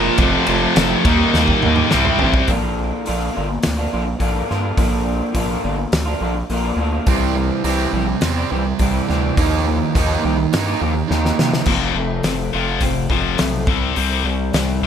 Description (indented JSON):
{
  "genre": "quiet-loud alternative rock",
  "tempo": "105 BPM",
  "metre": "4/4",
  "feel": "straight",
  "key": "unclear",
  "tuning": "A4 = 441 Hz",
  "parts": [
    { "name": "tonewheel organ", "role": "sustained chords", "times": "0.0-2.5 s", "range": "Eb4 to Bb5", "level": "-29 LUFS", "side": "right 1 dB", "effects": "none" },
    { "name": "crunchy overdriven guitar", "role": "riff", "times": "0.0-2.5 s", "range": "F2 to F4", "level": "-20 LUFS", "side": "right 1 dB", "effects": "none" },
    { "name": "thick fuzz guitar", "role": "riff", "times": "0.0-2.5, 7.1-11.6 s", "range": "F2 to Eb4", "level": "-21 LUFS", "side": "right 10 dB", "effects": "distortion" },
    { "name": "tight distorted guitar", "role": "riff", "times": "0.0-2.5, 11.7-14.9 s", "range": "F2 to Eb4", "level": "-20 LUFS", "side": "left 10 dB", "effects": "distortion" },
    { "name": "gritty driven synth bass", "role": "bass", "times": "0.0-14.9 s", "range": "E1 to C3", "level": "-22 LUFS", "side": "equal", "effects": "distortion" },
    { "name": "loose indie drum kit", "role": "drums", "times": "0.2-14.7 s", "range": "crash cymbal, hi-hat, kick drum, ride cymbal, snare drum, toms", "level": "-21 LUFS", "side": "equal", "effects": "none" },
    { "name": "electric guitar through a small old amp", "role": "arpeggios", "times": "2.5-14.9 s", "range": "F2 to G4", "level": "-22 LUFS", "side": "equal", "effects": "wide subtle chorus, digital delay" }
  ],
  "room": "light reverb",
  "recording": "none",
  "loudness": "-16 LUFS",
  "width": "side -8 dB against mid",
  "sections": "0.0-2.5 A section; 2.5-11.7 B section; 11.7-14.9 C section",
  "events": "drum fill 1.4-2.5, 11.1-11.7; half time 2.5-11.7",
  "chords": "0.2 F; 1.1 Eb; 1.9 C; 2.5 Bb; 7.1 C; 9.4 Ebadd9; 11.7 F; 13.7 C5"
}